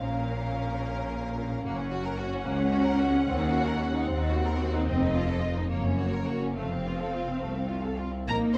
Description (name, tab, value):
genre	quick classical-period movement for string orchestra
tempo	73 BPM (dotted quarters)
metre	6/8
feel	uneven beats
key	unclear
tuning	A4 = 440 Hz
part	dark symphonic violin section	melody	0.0-8.4 s	Db5 to Bb5	-39 LUFS	equal	none
part	warm symphonic violin section	second line	0.0-8.6 s	A3 to C5	-38 LUFS	equal	none
part	warm symphonic viola section	accompaniment	0.0-8.5 s	Bb3 to Db4	-34 LUFS	equal	none
part	clear symphonic double bass section	bass	0.0-8.6 s	F1 to Eb2	-34 LUFS	equal	none
part	rich symphonic cello section	bass	0.0-8.6 s	C2 to Eb4	-35 LUFS	equal	none
room	moderate large studio reverb, RT60 1.2 s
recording	dark, warm production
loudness	-29 LUFS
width	mono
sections	0.0-8.3 A section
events	none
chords	0.0 Bbm; 1.6 Gb; 3.3 Cdim/Eb; 4.9 F7(no3); 5.7 Gb; 6.6 F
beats	| 0.02 0.83 | 1.64 2.45 | 3.26 4.07 | 4.88 5.71 | 6.57 7.42 | 8.28